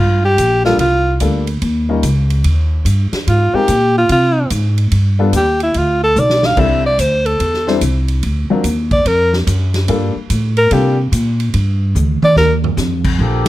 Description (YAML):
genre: jazz, big band swing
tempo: 145 BPM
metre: 4/4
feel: swing 66% on 8ths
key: G minor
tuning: A4 = 440 Hz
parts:
  - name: clear alto saxophone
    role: melody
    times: 0.0-12.5 s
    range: E4 to F5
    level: -14 LUFS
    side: equal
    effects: none
  - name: upright bass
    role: bass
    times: 0.0-13.5 s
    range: Bb1 to C3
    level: -15 LUFS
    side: equal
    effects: none
  - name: swinging big-band drum kit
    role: drums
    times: 0.4-13.5 s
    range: crash cymbal, hi-hat, kick drum, ride cymbal, snare drum, toms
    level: -22 LUFS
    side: right 1 dB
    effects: none
  - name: warm baby grand piano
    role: accompaniment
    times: 0.6-11.0 s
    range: F#3 to C5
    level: -18 LUFS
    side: left 4 dB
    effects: none
  - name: muted trombone section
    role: sustained chords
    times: 13.2-13.5 s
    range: F3 to A4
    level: -20 LUFS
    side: left 1 dB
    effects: none
room: light reverb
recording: close, detailed microphones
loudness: -12 LUFS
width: side -16 dB against mid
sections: 0.0-13.2 A section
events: alto saxophone solo 0.0-13.2; drum fill 6.2-6.6, 12.0-12.8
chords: 0.0 Gm9; 1.6 Eb7; 3.3 Ab69; 4.9 G7; 6.6 C6; 8.2 D(#9); 9.9 Gm9